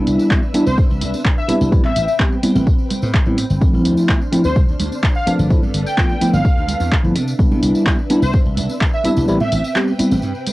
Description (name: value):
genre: filtered disco house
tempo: 127 BPM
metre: 4/4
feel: straight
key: unclear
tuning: A4 = 440 Hz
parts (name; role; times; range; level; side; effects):
- mellow tine electric piano; accompaniment; 0.0-10.1 s; F3 to G4; -17 LUFS; equal; phaser, vintage 12-bit sampler grit, sidechain pumping, cassette tape
- string machine, full ensemble; sustained chords; 0.0-10.5 s; C4 to F6; -28 LUFS; equal; ensemble chorus, sidechain pumping, cassette tape
- slap bass; bass; 0.0-10.3 s; G1 to C3; -20 LUFS; equal; sidechain pumping
- punchy analog drum machine; drums; 0.1-10.5 s; handclaps, hi-hat, tambourine; -24 LUFS; equal; sidechain pumping on perc, cassette tape, sidechain pumping on hats
- tambourine and congas; percussion; 0.2-10.5 s; none; -27 LUFS; right 3 dB; sidechain pumping on perc
- electronic kick drum; drums; 0.3-8.9 s; none; -16 LUFS; equal; cassette tape
- analog synth brass; melody; 0.7-9.8 s; C5 to G5; -22 LUFS; equal; chorus, cassette tape, sidechain pumping
room: light reverb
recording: home recording on cassette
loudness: -14 LUFS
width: side -18 dB against mid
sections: 0.0-10.5 A section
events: kick drops out 9.3-10.5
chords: 0.0 Cmaj9; 1.7 Am9; 3.6 Dm9; 5.3 G13; 7.2 Cmaj9; 9.3 Am9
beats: 0.31 0.78 1.25 | 1.73 2.20 2.67 3.14 | 3.62 4.09 4.56 5.03 | 5.50 5.98 6.45 6.92 | 7.39 7.87 8.34 8.81 | 9.28 9.76 10.23